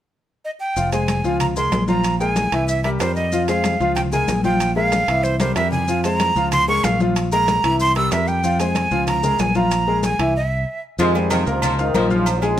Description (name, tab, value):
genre	latin, salsa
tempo	188 BPM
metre	4/4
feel	straight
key	F minor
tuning	A4 = 440 Hz
part	breathy bright jazz flute	melody	0.4-10.8 s	C5 to E6	-21 LUFS	right 2 dB	none
part	bright upright piano	accompaniment	0.8-12.6 s	E3 to F6	-22 LUFS	left 2 dB	none
part	fingered electric bass	bass	0.8-12.6 s	F1 to F2	-23 LUFS	equal	none
part	congas	percussion	0.8-12.6 s	none	-25 LUFS	left 2 dB	none
part	maracas	percussion	0.8-12.6 s	none	-34 LUFS	left 4 dB	none
part	timbales and agogo bells	percussion	0.9-12.6 s	none	-29 LUFS	right 7 dB	none
part	mellow trombone section	melody	11.0-12.6 s	Ab2 to Ab3	-22 LUFS	equal	none
part	mellow saxophone section	second line	11.0-12.4 s	Eb3 to F3	-25 LUFS	left 1 dB	none
room	moderate studio reverb, RT60 0.6 s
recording	none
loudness	-16 LUFS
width	side -11 dB against mid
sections	0.8-11.0 A section; 11.0-12.6 B section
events	drum fill 5.4-5.9; stop 10.4-11.0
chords	0.0 N.C.; 0.8 Fm; 1.4 Db6; 2.0 Bb5; 2.7 C7; 3.3 Fm; 4.0 Db6; 4.6 Bb5; 5.2 C7; 5.9 Fm; 6.5 Db6; 7.2 Bb5; 7.8 C7; 8.4 Fm; 9.1 Db6; 9.7 Bb5; 10.4 C; 11.0 Fm7; 11.6 Db6